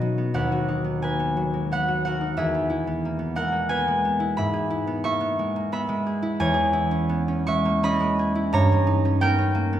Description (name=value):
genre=classical, solo harp piece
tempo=88 BPM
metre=3/4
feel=rubato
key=unclear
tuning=A4 = 436 Hz
part: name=concert harp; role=solo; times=0.0-9.8 s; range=D#2 to C#6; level=-21 LUFS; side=equal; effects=none
room=wet scoring stage reverb, RT60 1.6 s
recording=recorded in a church or concert hall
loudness=-21 LUFS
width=side -11 dB against mid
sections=0.0-9.8 A section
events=none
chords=0.3 B/D#; 2.4 E; 4.4 E/G#; 6.4 C#m/E; 8.5 D#7/G